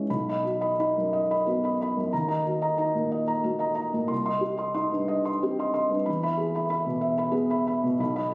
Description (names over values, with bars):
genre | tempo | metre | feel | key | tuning
neoclassical minimalist piano | 56-63 BPM (dotted quarters) | 6/8 | rubato | unclear | A4 = 441 Hz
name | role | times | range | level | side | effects
felt-muted upright piano | solo | 0.0-8.3 s | B1 to C6 | -24 LUFS | equal | none
room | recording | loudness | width
moderate recital hall reverb, RT60 1.7 s | recorded on a phone in the room, studio reverb, compression | -24 LUFS | side -25 dB against mid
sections
0.1-8.3 A section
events
none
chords
0.1 B; 2.1 D#m; 4.1 Cm; 6.1 E